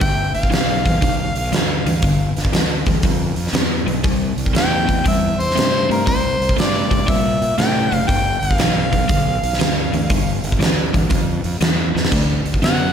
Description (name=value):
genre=blues rock power trio and southern rock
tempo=119 BPM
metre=4/4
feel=swing 67% on 8ths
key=G mixolydian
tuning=A4 = 440 Hz
part: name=warm harmonica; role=melody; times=0.0-12.9 s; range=Bb4 to G5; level=-21 LUFS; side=left 1 dB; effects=overdrive
part: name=crunchy overdriven guitar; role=riff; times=0.0-12.9 s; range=G2 to B3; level=-21 LUFS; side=equal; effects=slapback echo
part: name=fuzz fingered electric bass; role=bass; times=0.0-12.9 s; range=F#1 to Bb2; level=-24 LUFS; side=equal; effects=overdrive
part: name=huge arena drum kit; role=drums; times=0.0-12.8 s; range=hi-hat, kick drum, snare drum, splash cymbal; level=-19 LUFS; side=equal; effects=none
room=moderate lush hall reverb, RT60 2.0 s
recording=big arena sound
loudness=-15 LUFS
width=side -8 dB against mid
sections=0.0-12.9 A section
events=drum fill 11.9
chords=0.0 G7; 4.0 C; 8.1 G7; 12.1 D